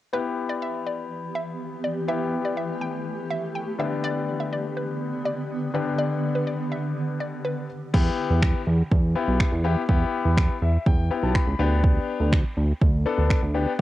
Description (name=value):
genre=dance-pop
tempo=123 BPM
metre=4/4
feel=straight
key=E minor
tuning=A4 = 443 Hz
part: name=hollow square pluck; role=melody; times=0.1-7.8 s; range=B4 to G5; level=-31 LUFS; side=equal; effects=chorus, sidechain pumping
part: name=clear concert grand piano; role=accompaniment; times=0.1-13.8 s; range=D3 to B5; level=-28 LUFS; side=left 5 dB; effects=sidechain pumping, cassette tape
part: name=granular cloud pad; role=sustained chords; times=0.9-7.9 s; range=D3 to G4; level=-31 LUFS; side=right 2 dB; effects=built-in reverb, sidechain pumping, cassette tape
part: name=fat analog bass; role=bass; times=7.9-13.8 s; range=B1 to E2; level=-22 LUFS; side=right 1 dB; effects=sidechain pumping
part: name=deep house drum kit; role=drums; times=7.9-13.8 s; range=crash cymbal, finger snaps, kick drum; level=-21 LUFS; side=right 1 dB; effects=cassette tape
room=light reverb, digital ambience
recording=home recording on cassette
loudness=-22 LUFS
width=side -15 dB against mid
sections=0.1-7.9 A section; 7.9-13.8 B section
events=grand piano fill 10.4-11.8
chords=0.1 Em; 3.8 G/D; 7.7 Em; 11.6 G/D